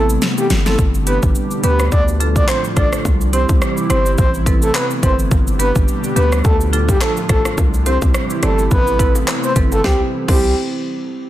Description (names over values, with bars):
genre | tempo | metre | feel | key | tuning
dancehall | 106 BPM | 4/4 | swing 56% on 16ths | C major | A4 = 440 Hz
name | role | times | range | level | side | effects
breathy flute-like synth lead | melody | 0.0-10.6 s | G4 to D5 | -20 LUFS | equal | chorus, tape echo
marimba with medium hard mallets | accompaniment | 0.0-10.5 s | A3 to D5 | -23 LUFS | right 2 dB | sidechain pumping
airy breathy pad | sustained chords | 0.0-10.1 s | A2 to G4 | -24 LUFS | right 1 dB | chorus, sidechain pumping
hard-hitting 808-style bass | bass | 0.0-10.5 s | G1 to D2 | -17 LUFS | equal | none
pop drum kit | drums | 0.1-10.4 s | crash cymbal, handclaps, hi-hat, kick drum, rim click, shaker, snare drum | -17 LUFS | equal | soft clipping on snare
bongos | percussion | 0.4-0.8, 5.3-10.5 s | none | -32 LUFS | left 6 dB | none
room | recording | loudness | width
little or no reverb | dense, heavily limited modern master | -13 LUFS | side -14 dB against mid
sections
0.8-9.8 A section; 9.8-11.3 B section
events
drum fill 0.0-0.8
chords
0.0 Amadd9; 0.8 G; 1.9 Dm; 3.0 C; 4.2 Amadd9; 5.3 G; 6.4 Dm; 7.6 C; 8.7 Amadd9; 9.8 C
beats
0.22 | 0.79 1.35 1.92 2.48 | 3.05 3.62 4.18 4.75 | 5.31 5.88 6.45 7.01 | 7.58 8.14 8.71 9.28 | 9.84 10.41